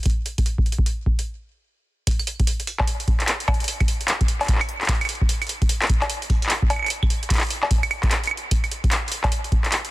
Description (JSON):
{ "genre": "IDM", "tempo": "149 BPM", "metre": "4/4", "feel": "swing 62% on 16ths", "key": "none", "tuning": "none", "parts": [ { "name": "booming analog drum machine", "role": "drums", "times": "0.0-9.9 s", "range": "claves, cowbell, handclaps, hi-hat", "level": "-23 LUFS", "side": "equal", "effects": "digital delay" }, { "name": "electronic kick drum", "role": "drums", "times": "0.1-9.6 s", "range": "none", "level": "-21 LUFS", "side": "equal", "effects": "none" } ], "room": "digital ambience", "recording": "dense, heavily limited modern master", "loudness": "-20 LUFS", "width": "side -18 dB against mid", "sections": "0.0-2.1 A section; 2.1-9.9 B section", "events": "stop 1.3-2.1", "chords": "none" }